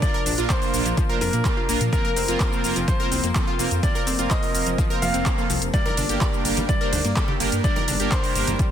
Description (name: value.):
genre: progressive house.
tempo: 126 BPM.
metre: 4/4.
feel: straight.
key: unclear.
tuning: A4 = 440 Hz.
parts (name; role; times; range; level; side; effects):
clear baby grand piano; melody; 0.0-8.7 s; Bb4 to F5; -29 LUFS; left 1 dB; sidechain pumping, ping-pong delay.
warm analog pad; sustained chords; 0.0-8.7 s; F3 to D5; -31 LUFS; left 2 dB; chorus, sidechain pumping.
analog pluck; arpeggios; 0.0-8.6 s; F3 to D5; -29 LUFS; left 1 dB; chorus, sidechain pumping, ping-pong delay.
soft supersaw; stabs; 0.0-8.5 s; Bb3 to C5; -28 LUFS; right 4 dB; phaser, sidechain pumping, ping-pong delay.
deep house drum kit; drums; 0.0-8.7 s; handclaps, hi-hat, ride cymbal, shaker; -28 LUFS; equal; overdrive.
electronic kick drum; drums; 0.0-8.7 s; none; -24 LUFS; equal; overdrive.
dark detuned saw bass; bass; 0.3-8.6 s; F1 to Bb2; -27 LUFS; equal; sidechain pumping.
congas; percussion; 5.9-8.6 s; none; -32 LUFS; right 2 dB; sidechain pumping on perc.
room: light reverb, digital ambience.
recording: dense, heavily limited modern master.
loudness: -19 LUFS.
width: side -9 dB against mid.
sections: 0.0-8.7 A section.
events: none.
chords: 0.0 Bb; 1.9 Fsus4; 5.7 Gm.